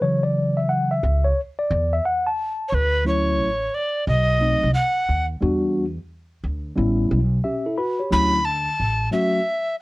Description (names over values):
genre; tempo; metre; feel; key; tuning
hip hop, jazz-hop; 89 BPM; 4/4; swing 65% on 16ths; D major; A4 = 440 Hz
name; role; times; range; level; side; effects
mellow tine electric piano; accompaniment; 0.0-9.4 s; C#3 to B5; -21 LUFS; left 1 dB; fast stereo tremolo
upright bass; bass; 1.0-9.1 s; A1 to E2; -22 LUFS; equal; none
breathy bright alto recorder; melody; 2.7-9.8 s; B4 to B5; -21 LUFS; equal; none
room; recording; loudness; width
light reverb; worn, warbling old tape, cassette tape, warbly pitch drift; -19 LUFS; side -20 dB against mid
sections
0.0-2.7 A section; 2.7-9.8 B section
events
tine electric piano solo 0.0-2.7; tine electric piano fill 7.1-8.1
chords
0.0 Dmaj7; 4.1 B7b9; 5.4 Em9; 6.8 A7; 8.1 Dmaj7